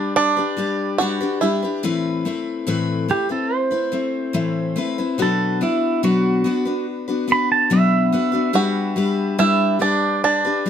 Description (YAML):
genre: acoustic folk duo or small band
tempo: 71 BPM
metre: 4/4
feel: straight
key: A dorian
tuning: A4 = 444 Hz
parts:
  - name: pedal steel guitar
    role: melody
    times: 0.0-10.7 s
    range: E4 to B5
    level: -21 LUFS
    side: right 5 dB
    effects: none
  - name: picked steel-string acoustic guitar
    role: accompaniment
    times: 0.0-10.7 s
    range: A2 to B4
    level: -20 LUFS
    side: left 4 dB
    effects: none
  - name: bluegrass banjo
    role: arpeggios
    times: 0.0-1.8, 8.6-10.7 s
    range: D4 to F#4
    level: -23 LUFS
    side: right 4 dB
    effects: none
room: light reverb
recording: none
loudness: -17 LUFS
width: side -8 dB against mid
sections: 0.0-1.8 A section; 1.8-10.7 B section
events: pedal steel guitar solo 1.8-10.7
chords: 0.0 G; 1.8 Amadd9; 5.2 Bm; 8.6 G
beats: 0.16 1.00 | 1.84 2.68 3.52 4.36 | 5.20 6.04 6.88 7.72 | 8.56 9.40 10.24